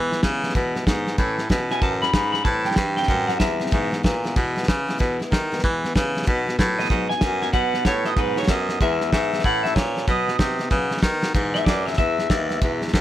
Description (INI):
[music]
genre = rockabilly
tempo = 189 BPM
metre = 4/4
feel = swing 63% on 8ths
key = E major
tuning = A4 = 440 Hz
[part]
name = picked steel-string acoustic guitar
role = accompaniment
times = 0.0-13.0 s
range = E2 to A4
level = -28 LUFS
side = left 2 dB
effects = none
[part]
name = bright baritone saxophone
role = bass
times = 0.0-13.0 s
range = D#2 to E3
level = -24 LUFS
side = equal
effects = none
[part]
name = cloth-damped thuddy drum kit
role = drums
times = 0.1-13.0 s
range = hi-hat, kick drum, snare drum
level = -23 LUFS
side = equal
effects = none
[part]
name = electric guitar through a small old amp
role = melody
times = 1.7-3.9, 6.8-12.9 s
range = B4 to B5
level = -24 LUFS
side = equal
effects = digital delay
[sound]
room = little or no reverb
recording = none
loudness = -19 LUFS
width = side -13 dB against mid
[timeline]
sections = 0.0-11.3 A section; 11.3-13.0 B section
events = drum fill 11.2; clean electric guitar solo 11.3-13.0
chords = 0.0 E; 1.2 A; 2.5 Am7; 3.7 E; 6.3 B; 8.8 E; 9.4 A; 10.1 B; 11.3 E